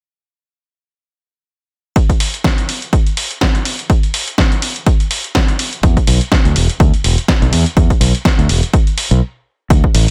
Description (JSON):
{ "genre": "filtered disco house", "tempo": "124 BPM", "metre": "4/4", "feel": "swing 56% on 16ths", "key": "unclear", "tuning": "A4 = 440 Hz", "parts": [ { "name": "dusty soul sampler-style drum kit", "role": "drums", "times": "2.0-10.1 s", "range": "hi-hat, snare drum", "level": "-21 LUFS", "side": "equal", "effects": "sidechain pumping on hats" }, { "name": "electronic kick drum", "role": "drums", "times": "2.0-9.9 s", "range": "none", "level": "-15 LUFS", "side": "equal", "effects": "overdrive" }, { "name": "modern bright fingered electric bass", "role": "bass", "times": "5.8-10.1 s", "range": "E1 to E2", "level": "-15 LUFS", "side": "equal", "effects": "sidechain pumping, low-pass filter" } ], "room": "little or no reverb", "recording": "none", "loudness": "-14 LUFS", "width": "mono", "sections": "2.0-9.7 A section", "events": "stop 9.2-9.7", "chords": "none", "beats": "| 1.96 2.45 2.93 3.41 | 3.90 4.38 4.87 5.35 | 5.83 6.32 6.80 7.29 | 7.77 8.25 8.74 9.22 | 9.70" }